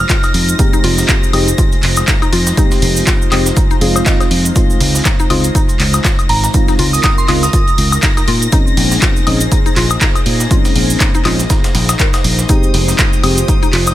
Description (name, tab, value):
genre	deep house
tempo	121 BPM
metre	4/4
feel	swing 58% on 16ths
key	F minor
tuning	A4 = 440 Hz
part	soft synth bell	melody	0.0-0.7, 6.3-7.9 s	Bb5 to F6	-19 LUFS	right 3 dB	chorus, dub echo
part	airy breathy pad	sustained chords	0.0-13.9 s	Ab3 to C5	-23 LUFS	left 1 dB	chorus, sidechain pumping
part	fingered electric bass	bass	0.0-13.9 s	F1 to Bb2	-16 LUFS	equal	sidechain pumping
part	warm chamber violin section	texture	0.0-13.9 s	Eb6 to Bb6	-25 LUFS	left 4 dB	sidechain pumping
part	mallet-like synth pluck	arpeggios	0.1-13.8 s	Eb4 to Eb5	-24 LUFS	left 3 dB	chorus, sidechain pumping, dub echo
part	breakbeat sampler-style drum kit	drums	0.1-13.9 s	hi-hat, snare drum	-25 LUFS	left 1 dB	high-pass filter on hats, high-pass filter on snare
part	electronic kick drum	drums	0.1-13.6 s	none	-14 LUFS	equal	none
part	punchy analog drum machine	drums	0.1-13.9 s	handclaps, hi-hat, woodblock	-18 LUFS	left 1 dB	none
part	cabasa	percussion	0.1-13.9 s	none	-22 LUFS	right 4 dB	none
part	mellow FM electric piano	stabs	0.6-13.4 s	Ab3 to G4	-20 LUFS	left 1 dB	chorus, sidechain pumping, dub echo
room	little or no reverb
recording	none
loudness	-10 LUFS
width	side -14 dB against mid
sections	0.0-13.9 A section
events	none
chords	0.0 Fm9; 4.6 Dbmaj9; 8.3 Bbm11; 12.5 Fm9